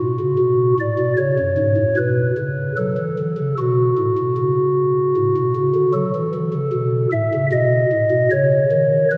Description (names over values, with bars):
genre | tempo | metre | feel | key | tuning
classical, chorale-style piece for pipe organ | 76 BPM | 4/4 | rubato | F# minor | A4 = 440 Hz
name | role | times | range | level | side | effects
chamber organ, stopped flute | solo | 0.0-9.2 s | F#2 to E5 | -18 LUFS | equal | none
room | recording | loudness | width
wet church reverb, RT60 2.9 s | recorded in a church or concert hall | -18 LUFS | mono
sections
0.0-9.2 A section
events
none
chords
0.0 F#m; 1.2 C#5; 2.8 F#m; 7.5 B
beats
0.40 1.19 1.99 | 2.79 3.58 4.38 5.17 | 5.96 6.75 7.53 8.32 | 9.11